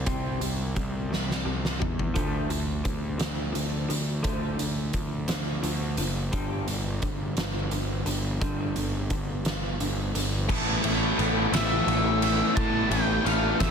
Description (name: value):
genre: quiet-loud alternative rock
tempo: 58 BPM (dotted quarters)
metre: 6/8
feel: straight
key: A minor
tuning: A4 = 440 Hz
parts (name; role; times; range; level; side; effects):
- electric guitar through a small old amp; arpeggios; 0.0-10.5 s; G2 to C4; -35 LUFS; equal; lush chorus, slapback echo
- fuzz picked electric bass; bass; 0.0-13.7 s; F#1 to A2; -29 LUFS; equal; overdrive
- oversized low-tuned drum kit; drums; 0.1-13.7 s; crash cymbal, hi-hat, kick drum, ride cymbal, snare drum, toms; -29 LUFS; equal; none
- biting overdriven guitar; riff; 10.5-13.7 s; A3 to A4; -29 LUFS; left 12 dB; none
- distorted electric guitar; riff; 10.5-13.7 s; A3 to A4; -31 LUFS; right 14 dB; distortion
- distorted electric guitar; riff; 10.5-13.7 s; A2 to A3; -32 LUFS; equal; overdrive
- octave-fuzz lead guitar; melody; 11.5-13.7 s; E5 to A5; -29 LUFS; right 2 dB; distortion, slapback echo
room: studio ambience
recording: dense, heavily limited modern master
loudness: -24 LUFS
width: side -6 dB against mid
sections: 0.0-10.5 A section; 10.5-13.7 B section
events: drum fill 1.1-2.2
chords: 0.0 C5; 2.2 Dm; 6.3 G5; 10.5 Asus2